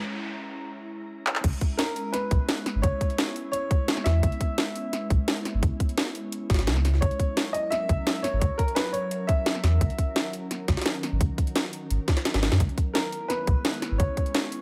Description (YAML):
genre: liquid drum and bass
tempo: 172 BPM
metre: 4/4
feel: straight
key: C# dorian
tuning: A4 = 437 Hz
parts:
  - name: glassy FM pad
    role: sustained chords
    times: 0.0-14.6 s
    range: D#3 to A#5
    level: -38 LUFS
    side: equal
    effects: ensemble chorus, built-in reverb, sidechain pumping
  - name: warm sub bass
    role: bass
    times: 0.0-14.1 s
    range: G#1 to F#2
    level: -26 LUFS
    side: equal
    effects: tube saturation
  - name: drum and bass drum kit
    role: drums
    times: 1.3-14.6 s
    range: crash cymbal, handclaps, hi-hat, snare drum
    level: -31 LUFS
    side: equal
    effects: overdrive
  - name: electronic kick drum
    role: drums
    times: 1.4-14.2 s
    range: none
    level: -27 LUFS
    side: equal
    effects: overdrive
  - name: jungle sampler-style drum kit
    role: drums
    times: 1.4-14.6 s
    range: hi-hat, snare drum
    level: -36 LUFS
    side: equal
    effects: high-pass filter on hats, high-pass filter on snare
  - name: warm grand piano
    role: melody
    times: 1.8-10.3, 12.9-14.6 s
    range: A#4 to E5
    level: -33 LUFS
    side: equal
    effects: delay
room: little or no reverb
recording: high-pass filter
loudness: -26 LUFS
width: mono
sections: 0.0-1.4 A section; 1.4-14.6 B section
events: build-up 0.0-1.4; break 0.0-1.4; drum fill 1.3, 12.1-12.6; drop 1.4-14.6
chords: 0.0 C#m; 1.4 C#m7; 7.0 F#7; 12.6 C#m7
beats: | 0.04 0.39 0.74 1.09 | 1.44 1.79 2.14 2.49 | 2.83 3.18 3.53 3.88 | 4.23 4.58 4.93 5.28 | 5.62 5.97 6.32 6.67 | 7.02 7.37 7.72 8.07 | 8.42 8.77 9.11 9.46 | 9.81 10.16 10.51 10.86 | 11.21 11.56 11.90 12.25 | 12.60 12.95 13.30 13.65 | 14.00 14.35